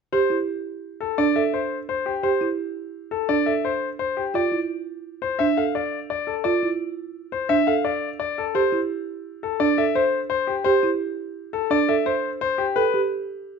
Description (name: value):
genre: classical, minimalist pattern music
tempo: 171 BPM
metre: 6/4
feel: straight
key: C major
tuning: A4 = 441 Hz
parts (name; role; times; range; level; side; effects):
- bright concert grand piano; melody; 0.1-13.0 s; G4 to F5; -23 LUFS; left 8 dB; none
- folk marimba with soft mallets; arpeggios; 0.1-13.2 s; D4 to C5; -24 LUFS; right 7 dB; none
room: moderate large studio reverb, RT60 0.8 s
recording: nothing above 7.7 kHz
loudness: -21 LUFS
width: side -5 dB against mid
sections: 0.1-13.6 A section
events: none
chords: 0.1 C6; 4.3 Fmaj7; 8.6 C6; 12.8 Em (rootless)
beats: | 0.14 0.49 0.84 1.19 1.54 1.89 | 2.24 2.59 2.94 3.29 3.64 4.00 | 4.35 4.70 5.05 5.40 5.75 6.10 | 6.45 6.80 7.15 7.50 7.85 8.21 | 8.56 8.91 9.26 9.61 9.96 10.31 | 10.66 11.01 11.36 11.71 12.06 12.42 | 12.77 13.12